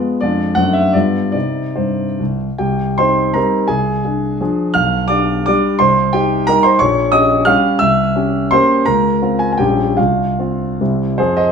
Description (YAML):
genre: classical, romantic triple-time dance for piano with dotted rhythms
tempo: 134-192 BPM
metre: 3/4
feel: rubato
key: C minor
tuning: A4 = 444 Hz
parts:
  - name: warm concert grand piano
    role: solo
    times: 0.0-11.5 s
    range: Bb1 to F6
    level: -13 LUFS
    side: equal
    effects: none
room: wet stone room reverb, RT60 1.0 s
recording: none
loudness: -13 LUFS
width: side -6 dB against mid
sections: 0.0-2.6 A section; 2.6-11.2 B section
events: none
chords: 0.2 Ddim/F; 0.6 D7/F#; 0.9 G7; 1.3 Cm; 3.7 Dm7b5/C; 4.7 G7/B; 5.8 Cm; 6.8 Gdim/Bb; 7.8 C7b9; 8.9 Dbmaj7; 9.6 Gm7b5/Bb; 10.0 F5/C; 10.8 C